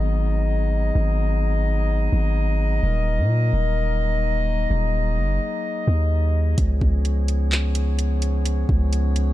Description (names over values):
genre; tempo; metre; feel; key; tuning
hip hop, atmospheric cloud-rap; 128 BPM; 4/4; half-time; G# dorian; A4 = 440 Hz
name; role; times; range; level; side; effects
dark woodwind section; sustained chords; 0.0-9.3 s; E#3 to D#5; -26 LUFS; left 3 dB; sidechain pumping
long sustained 808-style bass; bass; 0.0-9.3 s; D#1 to A#2; -20 LUFS; equal; none
smooth R&B drum kit; drums; 6.6-9.3 s; handclaps, hi-hat, kick drum; -23 LUFS; equal; none
room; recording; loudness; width
little or no reverb; none; -19 LUFS; side -15 dB against mid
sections
0.0-9.3 A section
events
none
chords
0.0 G#m7; 2.8 D#m; 6.6 C#7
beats
0.02 0.48 | 0.95 1.42 1.89 2.36 | 2.83 3.30 3.77 4.24 | 4.70 5.17 5.64 6.11 | 6.58 7.05 7.52 7.99 | 8.45 8.92